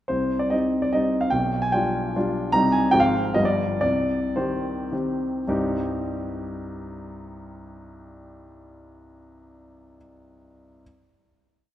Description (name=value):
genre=classical, romantic triple-time dance for piano with dotted rhythms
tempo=104-165 BPM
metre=3/4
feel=rubato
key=C minor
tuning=A4 = 440 Hz
part: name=warm grand piano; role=solo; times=0.1-10.8 s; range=G1 to Bb5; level=-22 LUFS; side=equal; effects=none
room=moderate concert hall reverb, RT60 2.5 s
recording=none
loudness=-21 LUFS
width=side -12 dB against mid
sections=0.1-5.5 A section; 5.5-8.6 final chord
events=slowing down 2.0-5.5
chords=0.1 Cm; 1.3 G7/B; 2.5 Cm; 2.9 Fm/Ab; 3.4 G7; 3.8 Cm